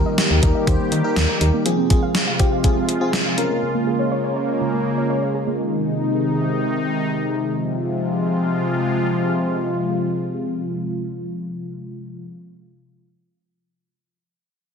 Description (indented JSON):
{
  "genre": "synth-pop",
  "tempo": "122 BPM",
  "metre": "4/4",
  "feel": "straight",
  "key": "F minor",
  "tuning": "A4 = 440 Hz",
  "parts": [
    { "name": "FM electric piano with soft pad layer", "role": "accompaniment", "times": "0.0-3.6 s", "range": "C4 to C5", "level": "-23 LUFS", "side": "left 2 dB", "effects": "chorus" },
    { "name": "sweeping resonant pad", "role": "sustained chords", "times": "0.0-12.3 s", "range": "C3 to G4", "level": "-21 LUFS", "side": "equal", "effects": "chorus" },
    { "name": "warbly dusty pluck", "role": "arpeggios", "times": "0.0-5.6 s", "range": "Db3 to F5", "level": "-27 LUFS", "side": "right 1 dB", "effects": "chorus, ping-pong delay" },
    { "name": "solid FM bass", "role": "bass", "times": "0.0-1.5 s", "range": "Eb2 to Eb3", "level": "-19 LUFS", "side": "equal", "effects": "none" },
    { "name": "gated 80s digital drum machine", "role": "drums", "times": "0.2-3.5 s", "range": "hi-hat, kick drum, snare drum", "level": "-19 LUFS", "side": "equal", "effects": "gated reverb, gated reverb snare" }
  ],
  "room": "moderate plate reverb, RT60 1.6 s, digital ambience",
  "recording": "dense, heavily limited modern master",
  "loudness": "-18 LUFS",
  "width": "side -6 dB against mid",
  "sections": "0.0-7.6 A section; 7.6-11.5 B section",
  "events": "none",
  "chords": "0.0 Eb; 1.7 Fm; 3.4 Bbm7; 5.6 Ab/C; 7.6 Fm",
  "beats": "0.18 0.67 1.17 | 1.66 2.15 2.64 3.13 | 3.62 4.12 4.61 5.10 | 5.59 6.08 6.58 7.07 | 7.56 8.05 8.54 9.03 | 9.53 10.02 10.51 11.00"
}